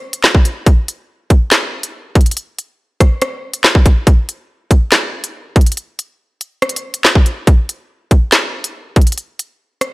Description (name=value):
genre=hip hop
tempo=141 BPM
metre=4/4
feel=half-time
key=none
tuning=none
part: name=drill drum kit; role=drums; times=0.1-9.9 s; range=handclaps, hi-hat, kick drum, rim click, snare drum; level=-10 LUFS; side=equal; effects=none
room=light reverb, digital ambience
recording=dry, gritty hardware recording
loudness=-12 LUFS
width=side -22 dB against mid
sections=0.0-9.9 A section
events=break 9.2-9.9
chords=none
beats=0.24 | 0.66 1.09 1.52 1.94 | 2.37 2.79 3.22 3.64 | 4.07 4.49 4.92 5.34 | 5.77 6.20 6.62 7.05 | 7.47 7.90 8.32 8.75 | 9.18 9.60